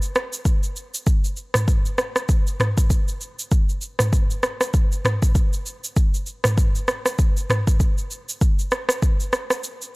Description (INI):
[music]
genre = afrobeats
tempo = 98 BPM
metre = 4/4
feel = swing 58% on 16ths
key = none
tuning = none
[part]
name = afro-pop drum kit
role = drums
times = 0.0-9.9 s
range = kick drum, rim click, shaker, toms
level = -19 LUFS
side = equal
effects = none
[sound]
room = digital ambience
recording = dry, gritty hardware recording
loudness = -19 LUFS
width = side -26 dB against mid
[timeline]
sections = 0.0-10.0 A section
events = break 9.6-10.0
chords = none